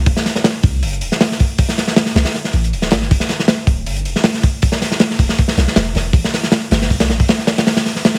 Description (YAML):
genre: drum and bass, jungle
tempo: 158 BPM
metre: 4/4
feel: straight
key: E minor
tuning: A4 = 444 Hz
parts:
  - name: warm 808-style bass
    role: bass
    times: 0.0-7.2 s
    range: D1 to C2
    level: -21 LUFS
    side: equal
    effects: none
  - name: crunchy breakbeat drum kit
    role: drums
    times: 0.1-8.2 s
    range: hi-hat, kick drum, snare drum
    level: -16 LUFS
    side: equal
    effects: none
room: light reverb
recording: heavily compressed radio sound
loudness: -16 LUFS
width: mono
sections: 0.0-8.2 A section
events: none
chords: none